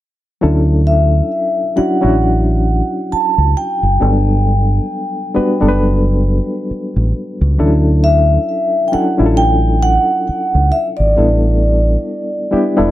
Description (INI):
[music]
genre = R&B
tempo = 67 BPM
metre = 4/4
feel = swing 58% on 16ths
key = D major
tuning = A4 = 445 Hz
[part]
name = bright reed electric piano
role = accompaniment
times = 0.4-12.9 s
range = E3 to B4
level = -17 LUFS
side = left 1 dB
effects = fast tremolo, plate reverb
[part]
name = deep dub fingered electric bass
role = bass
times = 0.4-12.9 s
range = E1 to D2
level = -13 LUFS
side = equal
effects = none
[part]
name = vibraphone with medium mallets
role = melody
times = 0.9-12.9 s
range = D5 to A5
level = -17 LUFS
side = equal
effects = plate reverb, tape echo
[sound]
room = moderate studio ambience, RT60 0.5 s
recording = none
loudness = -12 LUFS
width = side -14 dB against mid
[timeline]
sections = 0.4-12.9 A section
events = none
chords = 0.4 Dmaj9; 4.0 Gmaj9; 7.6 Dmaj9; 11.2 A7sus4